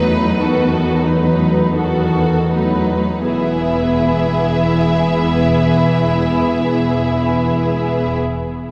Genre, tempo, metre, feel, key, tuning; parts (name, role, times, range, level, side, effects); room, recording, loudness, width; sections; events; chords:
classical, slow romantic movement for string orchestra; 25-33 BPM (dotted quarters); 6/8; rubato; E major; A4 = 442 Hz
warm symphonic violin section; melody; 0.0-8.2 s; B4 to E5; -26 LUFS; equal
warm symphonic violin section; second line; 0.0-8.2 s; D#4 to B4; -23 LUFS; equal
warm studio viola section; accompaniment; 0.0-8.2 s; D#3 to B3; -21 LUFS; equal
dark symphonic cello section; bass; 0.0-8.2 s; E2; -22 LUFS; equal
warm symphonic double bass section; bass; 3.3-8.2 s; E1; -23 LUFS; equal
wet cathedral reverb, RT60 4.4 s; recorded in a church or concert hall; -16 LUFS; mono
0.0-3.3 A section; 3.3-7.4 B section
slowing down 0.0-3.3
0.0 B7/E; 3.3 E